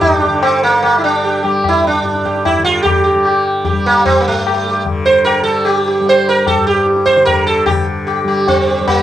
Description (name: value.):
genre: indian classical, Hindustani.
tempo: 149 BPM.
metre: 3/4.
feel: straight.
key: G raga kafi.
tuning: A4 = 439 Hz.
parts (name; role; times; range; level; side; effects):
sitar; melody; 0.0-9.0 s; A3 to C5; -12 LUFS; right 2 dB; cassette tape, plate reverb.
tanpura; drone; 0.0-9.0 s; G2 to G3; -20 LUFS; left 2 dB; none.
tabla; percussion; 0.0-9.0 s; none; -19 LUFS; left 7 dB; none.
room: wet studio ambience, RT60 0.5 s.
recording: home recording on cassette.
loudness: -11 LUFS.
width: side -12 dB against mid.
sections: 0.0-7.7 A section; 7.7-9.0 B section.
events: none.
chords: none.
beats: 0.01 | 0.42 0.82 1.23 | 1.63 2.04 2.44 | 2.85 3.25 3.65 | 4.05 4.46 4.86 | 5.26 5.66 6.07 | 6.47 6.87 7.27 | 7.67 8.07 8.47 | 8.87.